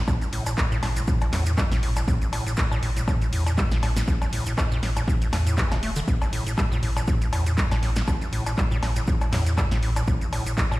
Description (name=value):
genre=acid house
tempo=120 BPM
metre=4/4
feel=swing 55% on 16ths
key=unclear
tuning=A4 = 440 Hz
part: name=acid bass, square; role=riff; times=0.0-10.8 s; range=A1 to A3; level=-28 LUFS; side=equal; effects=overdrive, digital delay
part: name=warm sub bass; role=bass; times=0.0-10.5 s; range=E1 to A2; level=-27 LUFS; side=equal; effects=sidechain pumping
part: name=electronic kick drum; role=drums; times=0.1-10.7 s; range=none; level=-23 LUFS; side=equal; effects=none
part: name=punchy analog drum machine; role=drums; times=0.1-10.8 s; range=cowbell, handclaps, hi-hat, snare drum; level=-30 LUFS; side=equal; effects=none
part: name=maracas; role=percussion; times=0.1-10.8 s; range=none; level=-40 LUFS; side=right 4 dB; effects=none
room=digital ambience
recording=played on a big sound system in a bare room, stone room reverb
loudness=-21 LUFS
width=side -18 dB against mid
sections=0.0-10.8 A section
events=none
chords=0.0 A5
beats=| 0.08 0.58 1.08 1.58 | 2.08 2.58 3.08 3.58 | 4.08 4.58 5.08 5.58 | 6.08 6.58 7.08 7.58 | 8.08 8.58 9.08 9.58 | 10.08 10.58